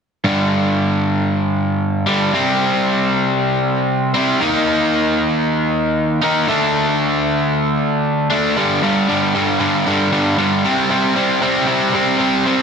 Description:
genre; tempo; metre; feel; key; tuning
rock; 115 BPM; 4/4; straight; G minor; A4 = 440 Hz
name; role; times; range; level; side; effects
crunchy overdriven guitar; solo; 0.2-12.6 s; G2 to Eb4; -14 LUFS; equal; spring reverb, tape echo
room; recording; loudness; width
moderate studio ambience, RT60 0.5 s; dense, heavily limited modern master; -14 LUFS; side -6 dB against mid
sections
0.3-8.6 A section; 8.6-12.6 B section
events
none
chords
0.3 G5; 2.3 C5; 4.4 Eb5; 6.5 D5; 8.6 G5; 10.7 C5

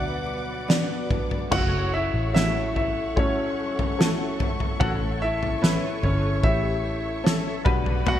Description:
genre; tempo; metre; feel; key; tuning
pop ballad; 73 BPM; 4/4; straight; F# phrygian; A4 = 440 Hz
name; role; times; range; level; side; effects
clear concert grand piano; melody; 0.0-8.2 s; C#4 to F#5; -28 LUFS; equal; none
warm upright piano; accompaniment; 0.0-8.2 s; A2 to E5; -29 LUFS; left 2 dB; analog chorus
dark studio string section; sustained chords; 0.0-8.2 s; G3 to D6; -35 LUFS; equal; none
fingerpicked steel-string acoustic guitar; arpeggios; 0.0-2.1, 8.1-8.2 s; B2 to B4; -36 LUFS; right 3 dB; wide subtle chorus, digital delay
vintage muted fingered electric bass; bass; 0.0-8.2 s; F#1 to D2; -28 LUFS; equal; none
loose indie drum kit; drums; 0.7-8.2 s; crash cymbal, kick drum, snare drum, toms; -25 LUFS; equal; gated reverb
room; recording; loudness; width
light reverb, studio reverb; bright 1980s-style digital production; -22 LUFS; side -11 dB against mid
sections
0.0-1.5 A section; 1.5-8.2 B section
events
none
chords
0.0 Bm; 1.5 F#m7; 4.8 A; 7.7 Gmaj7/B

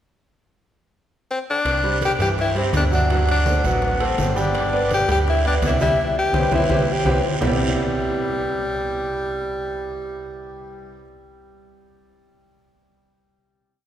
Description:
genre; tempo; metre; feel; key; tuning
latin, salsa; 166 BPM; 4/4; straight; C major; A4 = 440 Hz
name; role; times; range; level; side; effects
bright tenor saxophone; melody; 1.3-11.0 s; G3 to G4; -22 LUFS; left 2 dB; none
woody fretless electric bass; bass; 1.6-11.0 s; G1 to G2; -24 LUFS; equal; none
bongos; percussion; 1.7-7.5 s; none; -33 LUFS; left 3 dB; none
congas; percussion; 1.7-7.5 s; none; -29 LUFS; left 1 dB; none
guiro; percussion; 1.7-7.5 s; none; -35 LUFS; right 4 dB; none
timbales; percussion; 1.7-7.5 s; none; -32 LUFS; right 4 dB; none
warm grand piano; accompaniment; 1.8-11.0 s; C3 to G5; -25 LUFS; right 2 dB; none
room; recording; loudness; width
wet cathedral reverb, RT60 4.5 s; recorded in a church or concert hall; -18 LUFS; side -10 dB against mid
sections
0.2-1.7 pickup bar; 1.7-7.4 A section; 7.4-10.3 final chord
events
drum fill 6.0-7.4; band accent 6.0-7.4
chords
0.2 N.C.; 1.7 Cadd9; 3.1 D7; 4.5 G; 6.0 Cmaj7

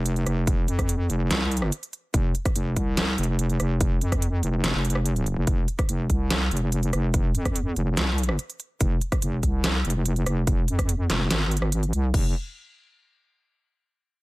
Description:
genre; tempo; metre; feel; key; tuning
heavy wobble dubstep; 144 BPM; 4/4; half-time; F minor; A4 = 440 Hz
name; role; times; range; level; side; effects
wobble bass; bass; 0.0-12.3 s; F1 to F2; -24 LUFS; equal; chorus, overdrive
dubstep drum kit; drums; 0.1-12.2 s; crash cymbal, hi-hat, rim click, snare drum; -28 LUFS; right 1 dB; none
electronic kick drum; drums; 0.5-12.2 s; none; -25 LUFS; equal; none
room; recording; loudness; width
little or no reverb; none; -22 LUFS; side -20 dB against mid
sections
0.0-12.1 A section; 12.1-13.8 B section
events
filter sweep on wobble bass 0.0-12.1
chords
none

